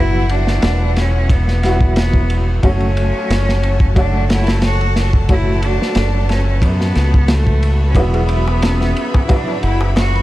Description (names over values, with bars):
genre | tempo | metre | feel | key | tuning
trip hop | 90 BPM | 4/4 | swing 54% on 16ths | F# minor | A4 = 440 Hz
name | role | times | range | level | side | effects
bright cello | melody | 0.0-10.2 s | A3 to F#4 | -22 LUFS | equal | vintage 12-bit sampler grit, tape echo
felt-muted upright piano | accompaniment | 0.0-10.2 s | F#3 to C#5 | -23 LUFS | equal | tremolo, vintage 12-bit sampler grit, tape echo
clear studio string section | sustained chords | 0.0-10.2 s | E4 to B5 | -27 LUFS | left 1 dB | none
deep dub fingered electric bass | bass | 0.0-10.2 s | E1 to F#2 | -16 LUFS | equal | tube saturation
crunchy breakbeat drum kit | drums | 0.3-10.2 s | kick drum, ride cymbal, snare drum | -18 LUFS | equal | none
dark detuned synth bell | arpeggios | 8.0-10.2 s | C#4 to F#5 | -26 LUFS | left 1 dB | chorus, vintage 12-bit sampler grit, tape echo
darbuka | percussion | 8.0-10.2 s | none | -31 LUFS | left 3 dB | none
room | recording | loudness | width
studio ambience | dark, warm production | -13 LUFS | side -16 dB against mid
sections
0.0-10.2 A section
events
none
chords
0.0 Esus2; 2.6 F#m; 8.0 Esus2